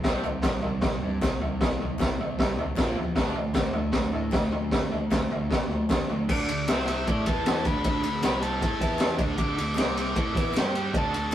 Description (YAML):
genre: garage rock duo or trio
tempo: 154 BPM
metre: 4/4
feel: straight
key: unclear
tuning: A4 = 437 Hz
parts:
  - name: fuzz guitar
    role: riff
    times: 0.0-11.3 s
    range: A#2 to A4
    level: -30 LUFS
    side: right 1 dB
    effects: distortion
  - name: fuzz picked electric bass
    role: bass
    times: 0.0-11.3 s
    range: A#1 to A2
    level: -34 LUFS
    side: equal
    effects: overdrive
  - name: raw garage drum kit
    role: drums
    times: 0.0-11.3 s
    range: crash cymbal, kick drum, ride cymbal, snare drum, toms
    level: -26 LUFS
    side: equal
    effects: none
  - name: group handclap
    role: percussion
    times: 0.2-11.3 s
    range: none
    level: -44 LUFS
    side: left 2 dB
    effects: none
  - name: overdriven combo organ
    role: melody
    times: 6.3-11.3 s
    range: D5 to D6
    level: -32 LUFS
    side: left 1 dB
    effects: none
room: light reverb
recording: rough rehearsal-room recording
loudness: -24 LUFS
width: side -11 dB against mid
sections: 0.0-6.3 A section; 6.3-11.3 B section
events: none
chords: 0.0 C5; 2.8 A#5; 3.2 D5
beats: | 0.05 0.44 0.83 1.22 | 1.61 2.00 2.39 2.78 | 3.17 3.56 3.95 4.34 | 4.73 5.12 5.51 5.90 | 6.29 6.68 7.07 7.45 | 7.84 8.23 8.62 9.00 | 9.39 9.78 10.16 10.55 | 10.94 11.32